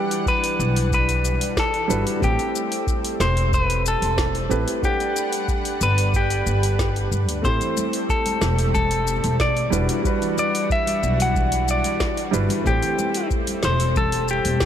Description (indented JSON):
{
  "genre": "sunset chillout",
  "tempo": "92 BPM",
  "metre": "4/4",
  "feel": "straight",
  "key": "A dorian",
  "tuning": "A4 = 443 Hz",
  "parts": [
    { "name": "clean electric guitar", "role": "melody", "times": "0.0-14.7 s", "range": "G4 to F#5", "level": "-24 LUFS", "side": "left 1 dB", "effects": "digital delay, slapback echo" },
    { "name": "dark concert grand piano", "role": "accompaniment", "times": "0.0-14.7 s", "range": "G3 to F#5", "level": "-28 LUFS", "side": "moving between left 2 dB and right 5 dB", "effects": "auto-pan, digital delay, slapback echo" },
    { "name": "lush unison pad", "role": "sustained chords", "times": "0.0-14.7 s", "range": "E3 to F#5", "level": "-29 LUFS", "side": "equal", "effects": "chorus" },
    { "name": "smooth R&B drum kit", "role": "drums", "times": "0.1-14.7 s", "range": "hi-hat, shaker, snare drum", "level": "-29 LUFS", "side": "left 1 dB", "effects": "none" },
    { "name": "electronic kick drum", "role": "drums", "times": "0.3-14.7 s", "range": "none", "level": "-25 LUFS", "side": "equal", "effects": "overdrive" },
    { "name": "upright bass", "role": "bass", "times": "0.6-14.7 s", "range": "E1 to G2", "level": "-22 LUFS", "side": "equal", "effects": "none" },
    { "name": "congas", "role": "percussion", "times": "7.6-14.6 s", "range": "none", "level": "-32 LUFS", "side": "left 3 dB", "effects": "none" }
  ],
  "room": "light reverb",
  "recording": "none",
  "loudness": "-19 LUFS",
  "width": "side -10 dB against mid",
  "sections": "0.0-14.7 A section",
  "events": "none",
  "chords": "0.0 Em9; 2.2 Am7; 4.8 Gmaj7; 7.4 Am7; 9.7 Em9; 12.7 Am7",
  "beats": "0.26 0.92 1.57 | 2.22 2.87 3.52 4.18 | 4.83 5.48 6.13 6.79 | 7.44 8.09 8.74 9.39 | 10.05 10.70 11.35 12.00 | 12.65 13.31 13.96 14.61"
}